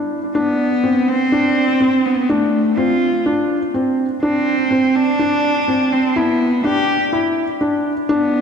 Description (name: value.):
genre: electronica.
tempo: 124 BPM.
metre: 4/4.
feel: straight.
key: unclear.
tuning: A4 = 440 Hz.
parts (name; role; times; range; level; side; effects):
felt-muted upright piano; riff; 0.0-8.4 s; C4 to E4; -17 LUFS; equal; analog delay.
dark cello; melody; 0.4-8.4 s; A3 to G4; -18 LUFS; equal; analog delay.
room: wet lush hall reverb, RT60 3.0 s.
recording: dreamy mix soaked in reverb.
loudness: -14 LUFS.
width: side -6 dB against mid.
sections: 0.3-8.4 A section.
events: break 0.0-0.3; drop 0.3-8.4.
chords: 0.3 Csus2; 6.2 Em7.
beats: | 0.35 0.83 1.32 1.80 | 2.29 2.77 3.25 3.74 | 4.22 4.70 5.19 5.67 | 6.16 6.64 7.12 7.61 | 8.09.